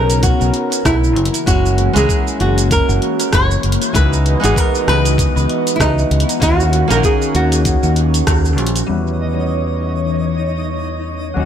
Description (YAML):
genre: sunset chillout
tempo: 97 BPM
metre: 4/4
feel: swing 57% on 16ths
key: unclear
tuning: A4 = 440 Hz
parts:
  - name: flamenco guitar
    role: melody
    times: 0.0-8.5 s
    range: D#4 to C#5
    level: -19 LUFS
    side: right 1 dB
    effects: dub echo
  - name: nylon-string guitar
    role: accompaniment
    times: 0.0-11.5 s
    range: E3 to B4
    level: -22 LUFS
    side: moving between left 6 dB and right 5 dB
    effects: auto-pan, low-pass filter, dub echo
  - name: airy breathy pad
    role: sustained chords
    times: 0.0-11.5 s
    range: C#3 to F#5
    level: -22 LUFS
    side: left 2 dB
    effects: chorus, phaser
  - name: fingered electric bass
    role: bass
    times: 0.0-11.5 s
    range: F#1 to E2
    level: -16 LUFS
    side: equal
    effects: none
  - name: deep house drum kit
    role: drums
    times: 0.1-8.9 s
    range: hi-hat, rim click, shaker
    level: -22 LUFS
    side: right 1 dB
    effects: none
  - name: electronic kick drum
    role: drums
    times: 0.2-8.4 s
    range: none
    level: -18 LUFS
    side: equal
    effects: none
  - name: twinkling granular texture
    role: texture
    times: 9.2-11.5 s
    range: D#4 to D#5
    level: -28 LUFS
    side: left 2 dB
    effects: built-in reverb
room: light reverb, digital ambience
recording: echo-heavy mix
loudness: -13 LUFS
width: side -9 dB against mid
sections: 0.0-8.9 A section; 8.9-11.5 B section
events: band accent 8.3-8.6; filter sweep on nylon-string guitar 8.9-11.5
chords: 0.0 Bmaj7; 1.2 F#7; 3.9 C#m11; 6.4 D#m7; 8.9 Em6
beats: 0.23 0.85 | 1.47 2.09 2.71 3.33 | 3.94 4.56 5.18 5.80 | 6.42 7.04 7.66 8.27 | 8.89 9.51 10.13 10.75 | 11.37